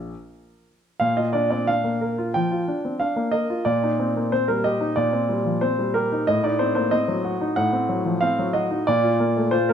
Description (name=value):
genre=classical-period piano sonatina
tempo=92 BPM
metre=4/4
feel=rubato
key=Bb major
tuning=A4 = 437 Hz
part: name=clear baby grand piano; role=solo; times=0.0-9.7 s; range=Bb1 to G5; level=-20 LUFS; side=equal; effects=none
room=moderate recital hall reverb, RT60 1.5 s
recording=close, detailed microphones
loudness=-20 LUFS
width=side -8 dB against mid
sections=0.0-1.0 A section; 1.0-9.7 A section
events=none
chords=0.0 N.C.; 1.0 Bb; 6.3 Adim7; 8.9 Bb